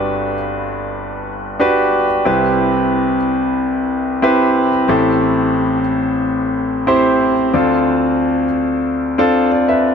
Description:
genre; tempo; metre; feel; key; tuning
pop; 91 BPM; 4/4; straight; unclear; A4 = 439 Hz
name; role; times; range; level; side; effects
clear concert grand piano; solo; 0.0-9.9 s; G1 to E5; -14 LUFS; equal; tape echo
room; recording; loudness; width
light reverb; none; -13 LUFS; side -6 dB against mid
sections
0.0-7.5 A section; 7.5-9.9 B section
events
none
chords
0.0 Gmaj7; 2.3 Cmaj7; 4.9 Am7; 7.5 Dm7

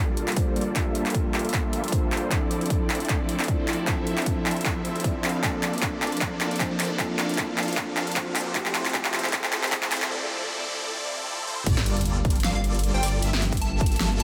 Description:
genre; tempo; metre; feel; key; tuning
future bass; 154 BPM; 4/4; swing 54% on 16ths, half-time; unclear; A4 = 441 Hz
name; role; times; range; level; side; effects
mellow tine electric piano; accompaniment; 0.0-11.7 s; F3 to D5; -34 LUFS; equal; sidechain pumping, delay
ethereal airy pad; sustained chords; 0.2-14.2 s; F3 to C6; -44 LUFS; equal; none
supersaw chords; riff; 0.0-14.2 s; F3 to F5; -33 LUFS; equal; phaser, cassette tape, sidechain pumping, low-pass filter, delay
detuned saw bass; bass; 0.0-14.2 s; D1 to D2; -34 LUFS; equal; none
riser and sub drop; sound effects; 3.6-13.2 s; none; -40 LUFS; equal; none
big-room dance drum kit; drums; 0.2-14.2 s; crash cymbal, handclaps, hi-hat, snare drum; -30 LUFS; equal; high-pass filter on hats, high-pass filter on snare, high-pass filter on cymbals, high-pass filter on room
electronic kick drum; drums; 0.4-13.9 s; none; -29 LUFS; equal; none
unison pluck; arpeggios; 11.7-14.2 s; C5 to E5; -41 LUFS; equal; phaser, sidechain pumping
plucky unison lead; melody; 12.4-14.2 s; F5 to A5; -35 LUFS; equal; phaser, sidechain pumping
room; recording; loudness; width
light reverb, digital ambience; high-pass filter; -25 LUFS; mono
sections
0.0-11.7 A section; 11.7-14.2 B section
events
build-up 0.0-11.7; drum fill 0.0-10.1; filter sweep on supersaw synth 0.0-11.7; filter sweep 0.0-11.7; break 10.1-11.7; drop 11.7-14.2; impact 11.7-13.2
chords
0.0 Gm9; 2.3 Dm9; 5.4 Bbmaj7/D; 8.6 Fmaj7; 11.7 Gm9

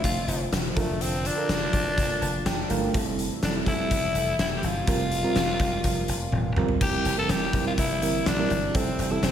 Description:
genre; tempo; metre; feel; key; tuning
1980s-style pop; 124 BPM; 4/4; straight; unclear; A4 = 440 Hz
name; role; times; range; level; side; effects
growling tenor saxophone; melody; 0.0-9.3 s; A3 to A4; -28 LUFS; left 2 dB; tape echo
FM electric piano with tremolo; accompaniment; 0.0-9.3 s; G3 to A5; -29 LUFS; right 4 dB; none
chorused pulse-width pad; sustained chords; 0.0-9.3 s; C3 to F4; -36 LUFS; left 1 dB; none
dry thumbed slap bass; bass; 0.0-9.3 s; E1 to Bb1; -31 LUFS; equal; none
big rock drum kit; drums; 0.0-9.3 s; crash cymbal, hi-hat, kick drum, snare drum, toms; -27 LUFS; left 1 dB; none
room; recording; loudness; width
moderate lush hall reverb, RT60 1.5 s, small room ambience; big arena sound; -23 LUFS; side -9 dB against mid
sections
0.0-6.8 A section; 6.8-9.3 B section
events
FM electric piano fill 2.0-2.9; drum fill 6.3-6.8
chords
0.0 F6; 0.8 Bbmaj7/F; 2.9 Am7/F; 4.9 C7sus4/F; 6.8 C7/F; 8.7 Am7/F

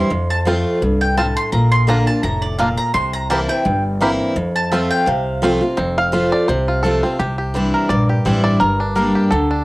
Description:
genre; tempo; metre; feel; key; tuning
bluegrass; 169 BPM; 4/4; swing 54% on 8ths; F major; A4 = 441 Hz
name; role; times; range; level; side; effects
picked steel-string acoustic guitar; accompaniment; 0.0-9.6 s; F2 to G4; -18 LUFS; equal; cassette tape
mandolin; stabs; 0.0-5.7 s; D5 to C6; -20 LUFS; equal; cassette tape
upright bass; bass; 0.0-9.6 s; F1 to F2; -20 LUFS; equal; none
bluegrass banjo; melody; 0.5-9.6 s; Bb3 to F5; -20 LUFS; equal; cassette tape
room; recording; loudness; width
light reverb; home recording on cassette; -15 LUFS; side -20 dB against mid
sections
0.0-5.8 A section; 5.8-9.6 A section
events
mandolin solo 0.0-5.8; five-string banjo solo 5.8-9.6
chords
0.1 F; 1.5 Bb; 2.9 C7; 4.4 F; 7.2 Cadd9; 8.6 Gm

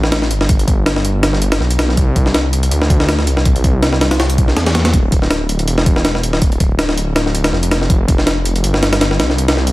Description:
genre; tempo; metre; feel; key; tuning
drum and bass, jungle; 162 BPM; 4/4; swing 54% on 16ths; D dorian; A4 = 439 Hz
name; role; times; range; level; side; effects
detuned saw bass; bass; 0.0-9.7 s; D1 to E2; -16 LUFS; equal; tube saturation
breakbeat sampler-style drum kit; drums; 0.0-9.7 s; hi-hat, kick drum, snare drum; -14 LUFS; equal; none
room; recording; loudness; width
digital ambience; dense, heavily limited modern master, vinyl crackle; -12 LUFS; side -18 dB against mid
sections
0.0-9.7 A section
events
none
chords
none

